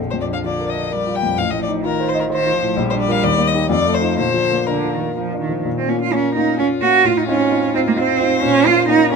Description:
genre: quick classical-period movement for piano trio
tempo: 130 BPM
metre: 3/4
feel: rubato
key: Bb major, Bb minor from 5.7 s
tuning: A4 = 444 Hz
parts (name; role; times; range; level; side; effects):
- rich cello; second line; 0.0-9.2 s; D3 to Gb4; -18 LUFS; right 6 dB; none
- dark grand piano; accompaniment; 0.0-9.2 s; A1 to Eb5; -20 LUFS; left 2 dB; none
- warm violin; melody; 0.1-9.2 s; F4 to G5; -22 LUFS; left 6 dB; none
room: moderate studio reverb, RT60 0.7 s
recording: minimal, uncompressed stereo recording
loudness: -15 LUFS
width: side -5 dB against mid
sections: 0.0-5.7 A section; 5.7-9.2 A section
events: none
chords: 0.0 Bb; 1.4 F7/A; 2.8 Bb; 3.2 Eb; 3.7 F7; 4.2 Bb; 5.7 Bbm; 7.1 F7/A; 8.4 Bbm

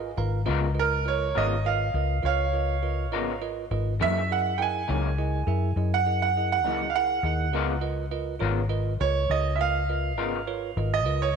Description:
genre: slow blues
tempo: 68 BPM (dotted quarters)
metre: 12/8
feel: straight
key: Db mixolydian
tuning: A4 = 440 Hz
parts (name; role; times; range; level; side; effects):
- bell-like tine electric piano; accompaniment; 0.0-11.3 s; Fb4 to Bb5; -33 LUFS; right 10 dB; none
- vintage muted fingered electric bass; bass; 0.0-11.4 s; Ab1 to Gb2; -28 LUFS; left 2 dB; none
- electric guitar through a small old amp; accompaniment; 0.5-10.4 s; Gb2 to Bb4; -32 LUFS; left 13 dB; harmonic tremolo
- bright upright piano; second line; 0.8-11.4 s; Bb4 to Ab5; -26 LUFS; right 6 dB; tape echo
room: moderate echo chamber reverb, RT60 1.7 s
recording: 1960s-style stereo with parts hard left and right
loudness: -24 LUFS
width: side -6 dB against mid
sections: 0.5-11.4 A section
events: tine electric piano fill 0.0-0.5; upright piano solo 0.5-11.4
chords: 0.5 Db13; 4.0 Gb13; 7.5 Db13

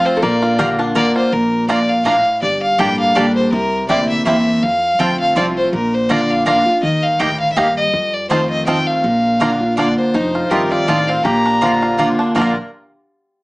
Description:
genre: bluegrass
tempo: 163 BPM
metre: 3/4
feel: swing 55% on 8ths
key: Bb major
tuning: A4 = 439 Hz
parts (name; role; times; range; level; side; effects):
- bluegrass banjo; melody; 0.0-12.6 s; F3 to Bb4; -22 LUFS; right 1 dB; slapback echo
- clear fiddle; melody; 0.0-12.0 s; Bb4 to Bb5; -17 LUFS; equal; none
- lap resonator guitar; second line; 0.0-1.3, 10.1-12.5 s; Eb4 to C5; -21 LUFS; left 1 dB; none
- picked steel-string acoustic guitar; accompaniment; 0.0-12.5 s; F2 to A4; -18 LUFS; equal; none
- upright bass; bass; 0.2-12.5 s; F1 to F2; -27 LUFS; equal; none
- mandolin; stabs; 0.6-12.5 s; Bb3 to Bb5; -21 LUFS; right 2 dB; slapback echo
room: moderate studio reverb, RT60 0.6 s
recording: small speaker sound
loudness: -13 LUFS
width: side -22 dB against mid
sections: 0.0-1.3 A section; 1.3-10.1 B section; 10.1-12.4 C section; 12.4-13.4 D section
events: fiddle solo 0.0-1.3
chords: 0.2 Bb; 2.4 Gmadd9; 3.5 C7; 4.6 F; 5.7 Bb; 6.8 Eb; 7.9 F7; 9.0 Bb; 10.1 F7; 11.2 Bb

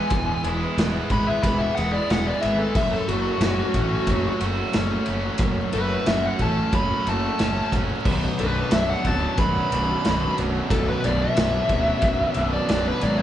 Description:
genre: classic rock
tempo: 91 BPM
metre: 4/4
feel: straight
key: B dorian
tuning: A4 = 439 Hz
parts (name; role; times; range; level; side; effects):
- dark smooth lead guitar; melody; 0.0-13.2 s; F#4 to B5; -25 LUFS; left 1 dB; overdrive
- string machine, cellos; sustained chords; 0.0-13.2 s; G#3 to D5; -34 LUFS; right 1 dB; none
- cranked stack guitar; riff; 0.0-13.2 s; B1 to F#4; -28 LUFS; right 4 dB; overdrive
- tight distorted guitar; riff; 0.0-13.2 s; B1 to F#4; -31 LUFS; left 6 dB; distortion
- fuzz fingered electric bass; bass; 0.1-13.2 s; B0 to A1; -26 LUFS; equal; overdrive
- big rock drum kit; drums; 0.1-13.2 s; crash cymbal, kick drum, ride cymbal, snare drum; -26 LUFS; equal; none
- crunchy overdriven guitar; riff; 8.0-13.2 s; B1 to B2; -30 LUFS; equal; none
room: moderate large studio reverb, RT60 0.8 s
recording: band playing live in one room, vinyl crackle, nothing above 10.9 kHz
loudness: -20 LUFS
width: side -11 dB against mid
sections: 0.0-13.2 A section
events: lead electric guitar solo 0.0-13.2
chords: 0.0 E; 2.8 F#m; 8.1 Bm

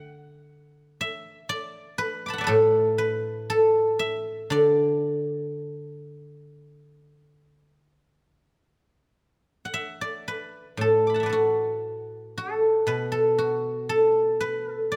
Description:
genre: chinese traditional, Chinese solo plucked strings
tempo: 58 BPM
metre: 4/4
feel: uneven beats, rubato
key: D gong mode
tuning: A4 = 440 Hz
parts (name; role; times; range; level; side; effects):
- guzheng; solo; 0.0-15.0 s; A2 to D6; -25 LUFS; equal; none
room: light reverb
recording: close, detailed microphones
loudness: -24 LUFS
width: mono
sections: 0.0-10.8 A section; 10.8-15.0 B section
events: none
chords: none

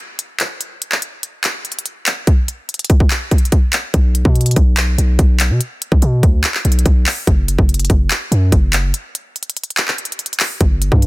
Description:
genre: hip hop, trap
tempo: 144 BPM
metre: 4/4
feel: half-time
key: B minor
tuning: A4 = 440 Hz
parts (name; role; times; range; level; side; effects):
- trap drum kit; drums; 0.2-11.1 s; handclaps, hi-hat, kick drum; -14 LUFS; equal; none
- warm 808-style bass; bass; 3.9-11.1 s; F#1 to B2; -15 LUFS; equal; none
room: little or no reverb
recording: dense, heavily limited modern master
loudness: -13 LUFS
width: side -20 dB against mid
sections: 0.0-3.9 A section; 3.9-11.1 B section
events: break 8.9-10.6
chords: none

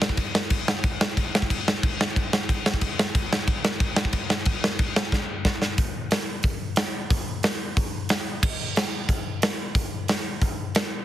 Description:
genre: punk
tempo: 182 BPM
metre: 4/4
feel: straight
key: none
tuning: none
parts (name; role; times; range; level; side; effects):
- big rock drum kit; drums; 0.0-10.8 s; crash cymbal, hi-hat, kick drum, snare drum; -22 LUFS; equal; none
room: little or no reverb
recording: heavily compressed radio sound, multiband compression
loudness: -22 LUFS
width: side -12 dB against mid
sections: 0.0-5.8 A section; 5.8-11.0 B section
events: drum fill 5.1-5.8; half time 5.8-11.0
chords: none

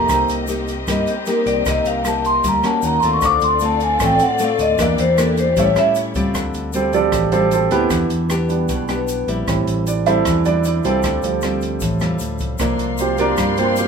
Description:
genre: bossa nova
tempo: 154 BPM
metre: 4/4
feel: straight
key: D minor from 6.3 s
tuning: A4 = 442 Hz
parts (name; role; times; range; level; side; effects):
- vibraphone with medium mallets; melody; 0.0-5.9 s; G4 to D6; -17 LUFS; left 1 dB; none
- nylon-string guitar; accompaniment; 0.0-13.9 s; A2 to G4; -22 LUFS; left 3 dB; none
- warm concert grand piano; accompaniment; 0.0-13.9 s; F3 to G5; -20 LUFS; right 5 dB; none
- warm symphonic string section; sustained chords; 0.0-6.3, 12.6-13.9 s; A3 to C6; -26 LUFS; left 2 dB; none
- fingered electric bass; bass; 0.0-13.9 s; A1 to G2; -23 LUFS; equal; none
- open jazz drum kit; drums; 0.1-13.9 s; hi-hat, kick drum, rim click; -27 LUFS; equal; none
- egg shaker; percussion; 0.1-13.9 s; none; -36 LUFS; left 8 dB; none
room: moderate studio ambience, RT60 0.5 s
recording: minimal, uncompressed stereo recording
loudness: -15 LUFS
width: side -6 dB against mid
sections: 0.0-6.3 A section; 6.3-13.9 A section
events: vibraphone solo 0.0-6.3; grand piano solo 6.3-13.9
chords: 0.1 Cm7; 2.8 Ebm7; 3.2 Dm7; 4.8 Em7b5; 5.6 A7; 6.3 Dm11; 7.9 Em7; 9.5 Dm11; 12.6 C9sus4

